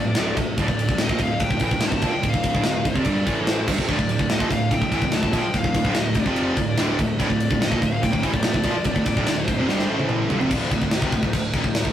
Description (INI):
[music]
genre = heavy metal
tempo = 145 BPM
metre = 4/4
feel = straight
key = D minor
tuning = A4 = 440 Hz
[part]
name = high-gain lead guitar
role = melody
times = 0.0-10.1 s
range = D5 to A5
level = -28 LUFS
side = left 3 dB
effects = distortion
[part]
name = distorted electric guitar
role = riff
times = 0.0-10.5 s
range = D2 to A3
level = -24 LUFS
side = right 3 dB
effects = overdrive
[part]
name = heavy high-gain guitar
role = riff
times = 0.0-11.9 s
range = D2 to A3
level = -32 LUFS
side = left 5 dB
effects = none
[part]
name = fuzz picked electric bass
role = bass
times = 0.0-11.9 s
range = D1 to Bb1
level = -31 LUFS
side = left 1 dB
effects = none
[part]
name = tight metal drum kit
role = drums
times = 0.1-11.9 s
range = crash cymbal, kick drum, ride cymbal, snare drum, toms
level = -23 LUFS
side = equal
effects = none
[part]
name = tight distorted guitar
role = riff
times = 3.9-11.9 s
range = D2 to A3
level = -27 LUFS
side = equal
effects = distortion
[sound]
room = light reverb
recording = rough rehearsal-room recording, warm saturation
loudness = -19 LUFS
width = side -11 dB against mid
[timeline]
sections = 0.0-10.5 A section; 10.5-11.9 B section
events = drum fill 9.7-10.5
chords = 0.0 Dm; 3.3 A5; 3.7 Dm; 9.9 A5; 10.3 Dm